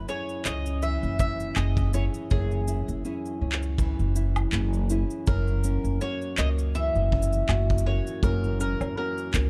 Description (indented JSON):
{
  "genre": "folktronica",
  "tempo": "81 BPM",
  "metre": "4/4",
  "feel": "swing 56% on 16ths",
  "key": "F# mixolydian",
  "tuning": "A4 = 439 Hz",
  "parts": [
    { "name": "mandolin", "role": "melody", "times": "0.0-9.5 s", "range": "G#4 to E5", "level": "-34 LUFS", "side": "equal", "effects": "tape echo" },
    { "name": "nylon-string guitar", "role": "arpeggios", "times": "0.0-9.5 s", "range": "F#2 to G#4", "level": "-35 LUFS", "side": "equal", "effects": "none" },
    { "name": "upright bass", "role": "bass", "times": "0.0-9.5 s", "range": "F#1 to C#2", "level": "-28 LUFS", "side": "equal", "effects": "none" },
    { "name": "electronic shaker, handclaps and woodblock", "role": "drums", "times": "0.1-9.5 s", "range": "none", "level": "-35 LUFS", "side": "equal", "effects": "overdrive" },
    { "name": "kick drum", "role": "drums", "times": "1.2-9.5 s", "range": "none", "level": "-31 LUFS", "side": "equal", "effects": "none" }
  ],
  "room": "small room ambience",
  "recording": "dark, warm production",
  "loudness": "-26 LUFS",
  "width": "mono",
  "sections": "0.0-9.5 A section",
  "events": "none",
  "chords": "0.0 C#m/F#; 5.3 F#7"
}